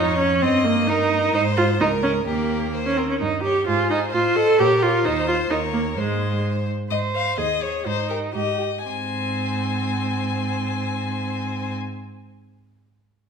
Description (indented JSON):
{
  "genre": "quick classical-period movement for string quartet",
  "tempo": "114-132 BPM",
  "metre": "2/4",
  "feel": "straight",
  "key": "Ab major",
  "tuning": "A4 = 439 Hz",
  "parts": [
    { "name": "rich violin", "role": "melody", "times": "0.0-11.7 s", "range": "Bb4 to Ab5", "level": "-28 LUFS", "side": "left 7 dB", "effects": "none" },
    { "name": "clear violin", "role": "second line", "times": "0.0-11.7 s", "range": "G4 to Eb5", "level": "-30 LUFS", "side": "left 2 dB", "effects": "none" },
    { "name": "clear viola", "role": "accompaniment", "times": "0.0-11.7 s", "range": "Ab3 to C5", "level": "-22 LUFS", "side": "right 2 dB", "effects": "none" },
    { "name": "rich cello", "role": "bass", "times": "0.0-11.7 s", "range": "Db2 to Bb2", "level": "-27 LUFS", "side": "right 4 dB", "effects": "none" }
  ],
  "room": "wet recital hall reverb, RT60 1.4 s",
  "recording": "minimal, uncompressed stereo recording",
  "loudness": "-19 LUFS",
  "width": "side -6 dB against mid",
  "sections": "0.0-6.9 A section; 6.9-8.9 B section; 8.9-11.0 C section",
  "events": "slowing down 6.4-8.9",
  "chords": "0.4 Eb/G; 1.3 Ab; 1.8 Bbm/Db; 2.3 Eb; 3.2 Eb7/G; 3.7 Ab; 4.1 F7/A; 4.6 Bbm; 5.0 Cmadd11/Eb; 5.5 Eb5; 6.0 Ab; 7.9 Eb/Ab; 8.9 Ab"
}